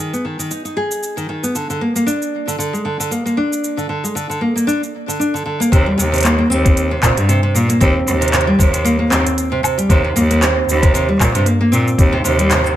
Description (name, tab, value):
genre	folktronica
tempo	115 BPM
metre	4/4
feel	swing 56% on 16ths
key	Eb major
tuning	A4 = 442 Hz
part	nylon-string guitar	arpeggios	0.0-12.8 s	C3 to Ab4	-17 LUFS	equal	digital delay
part	organic electronic drum kit	drums	0.1-12.8 s	handclaps, hi-hat, shaker, woodblock	-21 LUFS	equal	none
part	bright cello	bass	5.7-12.7 s	Eb2 to Bb2	-16 LUFS	equal	none
part	electronic kick drum	drums	5.7-12.1 s	none	-13 LUFS	equal	none
room	light reverb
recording	none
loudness	-14 LUFS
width	side -12 dB against mid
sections	0.0-5.7 A section; 5.7-12.8 B section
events	none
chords	0.0 Abm; 1.6 Bb; 5.7 Eb5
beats	0.51 1.03 | 1.55 2.08 2.60 3.12 | 3.64 4.16 4.68 5.21 | 5.73 6.25 6.77 7.29 | 7.81 8.34 8.86 9.38 | 9.90 10.42 10.94 11.47 | 11.99 12.51